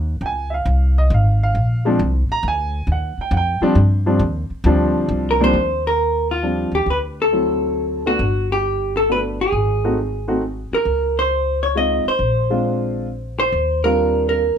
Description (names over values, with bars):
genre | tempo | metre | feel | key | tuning
jazz, small-group swing and bop | 135 BPM | 3/4 | swing 68% on 8ths | Eb major | A4 = 440 Hz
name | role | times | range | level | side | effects
upright bass | bass | 0.0-14.5 s | G1 to G2 | -20 LUFS | equal | none
warm baby grand piano | accompaniment | 0.2-14.4 s | Eb2 to Bb5 | -21 LUFS | equal | none
vintage hollow-body jazz guitar | melody | 5.3-14.6 s | F4 to Eb5 | -18 LUFS | equal | plate reverb
room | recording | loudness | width
moderate club reverb, RT60 0.7 s | none | -16 LUFS | side -8 dB against mid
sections
0.0-5.5 A section; 5.5-14.6 B section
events
none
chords
0.2 Dbmaj7; 1.6 Bb9; 2.9 Ebmaj13; 6.9 D7; 8.2 Gmaj9; 9.5 Ab7b9; 10.9 Dbmaj9; 12.2 Bb9; 13.5 Ebmaj13